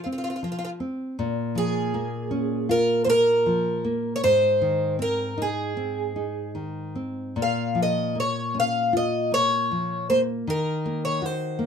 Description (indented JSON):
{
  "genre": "fado-style ballad",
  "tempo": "77 BPM",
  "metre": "4/4",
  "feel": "uneven beats, rubato",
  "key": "unclear",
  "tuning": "A4 = 440 Hz",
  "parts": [
    { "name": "picked twelve-string acoustic guitar", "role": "melody", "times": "0.0-11.7 s", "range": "F4 to F5", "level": "-23 LUFS", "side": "equal", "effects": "none" },
    { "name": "nylon-string guitar", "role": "accompaniment", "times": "0.0-11.7 s", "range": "Ab2 to Gb4", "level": "-27 LUFS", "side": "left 2 dB", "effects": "none" }
  ],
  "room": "moderate small room reverb, RT60 0.5 s",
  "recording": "minimal, uncompressed stereo recording",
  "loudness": "-22 LUFS",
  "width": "side -7 dB against mid",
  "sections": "0.0-11.7 A section",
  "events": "none",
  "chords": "0.0 F5; 1.2 Bbm; 4.2 Ab; 7.4 Bbm; 10.5 Ebm",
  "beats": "0.43 | 1.17 1.93 2.70 3.46 | 4.23 4.99 5.77 6.57 | 7.37 8.16 8.94 9.70 | 10.47 11.22"
}